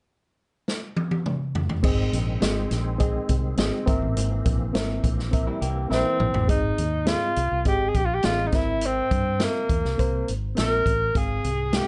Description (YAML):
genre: uptempo 1960s-style soul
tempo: 103 BPM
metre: 4/4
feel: straight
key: Ab major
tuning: A4 = 436 Hz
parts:
  - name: swinging big-band drum kit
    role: drums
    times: 0.7-11.9 s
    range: crash cymbal, hi-hat, kick drum, snare drum, toms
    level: -28 LUFS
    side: equal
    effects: none
  - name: reed electric piano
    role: accompaniment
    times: 1.8-11.9 s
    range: Ab2 to F5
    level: -32 LUFS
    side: equal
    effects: none
  - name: bright tonewheel organ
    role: sustained chords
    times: 1.8-6.5 s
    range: Eb3 to C4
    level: -36 LUFS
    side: equal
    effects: slow rotary speaker, chorus vibrato
  - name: fingered electric bass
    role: bass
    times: 1.8-11.8 s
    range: Ab1 to G2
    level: -30 LUFS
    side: equal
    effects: none
  - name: electric guitar through a small old amp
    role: riff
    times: 5.5-6.5 s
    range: E3 to G4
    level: -34 LUFS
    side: equal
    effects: none
  - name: breathy tenor saxophone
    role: melody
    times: 5.9-11.9 s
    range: Bb3 to Bb4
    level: -27 LUFS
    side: equal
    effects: none
room: light reverb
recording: dark, warm production, nothing above 10.7 kHz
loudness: -24 LUFS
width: mono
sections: 0.0-1.8 A section; 1.8-6.5 B section; 6.5-11.9 C section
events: drum fill 0.7-1.8, 5.9-6.5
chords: 0.0 N.C.; 1.8 Ab; 3.9 C7/Ab; 6.5 Ab; 8.5 C7/Ab; 11.2 Fm/Ab